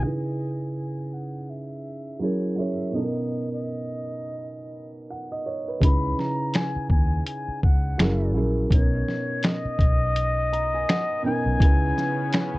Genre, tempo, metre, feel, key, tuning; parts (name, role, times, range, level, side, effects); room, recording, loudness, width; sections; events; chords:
lo-fi hip hop; 83 BPM; 4/4; swing 59% on 16ths; C# dorian; A4 = 440 Hz
mellow silver concert flute; melody; 0.0-12.6 s; C#5 to B5; -30 LUFS; left 2 dB; low-pass filter
felt-muted upright piano; accompaniment; 0.0-12.6 s; B2 to A#5; -28 LUFS; right 2 dB; low-pass filter
vintage muted fingered electric bass; bass; 5.8-12.6 s; F#1 to D#2; -25 LUFS; equal
lo-fi sampler-style drum kit; drums; 5.8-12.5 s; finger snaps, hi-hat, kick drum, shaker, snare drum; -21 LUFS; equal
lush unison pad; sustained chords; 11.6-12.6 s; C#3 to C#4; -35 LUFS; equal; chorus, low-pass filter
light reverb; cassette tape; -22 LUFS; side -20 dB against mid
0.0-11.6 A section
filter sweep 0.0-11.6; kick muted 10.2-11.6; felt piano fill 10.2-11.6
0.0 C#m9; 2.2 F#9; 2.9 Bmaj9; 5.8 C#m9; 8.0 F#9; 8.7 Bmaj9; 11.6 C#m9